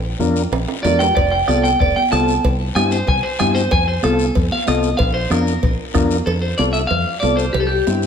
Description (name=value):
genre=latin, cumbia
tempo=188 BPM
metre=4/4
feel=straight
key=F major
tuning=A4 = 435 Hz
part: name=fingered electric bass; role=bass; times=0.0-8.1 s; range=F1 to G2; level=-21 LUFS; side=equal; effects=none
part: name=overdriven combo organ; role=accompaniment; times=0.2-8.1 s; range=C4 to Bb4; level=-23 LUFS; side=left 5 dB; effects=none
part: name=congas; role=percussion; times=0.2-8.1 s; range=none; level=-24 LUFS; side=right 1 dB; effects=none
part: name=guiro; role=percussion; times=0.2-8.1 s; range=none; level=-32 LUFS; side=left 8 dB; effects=none
part: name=cowbell and timbales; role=percussion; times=0.5-7.7 s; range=none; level=-27 LUFS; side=right 6 dB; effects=none
part: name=clean electric guitar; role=melody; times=0.8-8.0 s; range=G4 to A5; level=-19 LUFS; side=right 1 dB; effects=spring reverb
part: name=bombo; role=percussion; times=1.2-6.1 s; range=none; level=-22 LUFS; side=left 1 dB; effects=none
room=wet large studio reverb, RT60 1.4 s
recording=none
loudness=-15 LUFS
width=side -7 dB against mid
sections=0.0-6.3 A section; 6.3-8.1 B section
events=clean electric guitar solo 0.0-6.3; drum fill 0.5-1.2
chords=0.0 Bb; 1.2 F; 2.4 C; 3.7 F; 5.0 Bb; 6.3 F; 7.6 C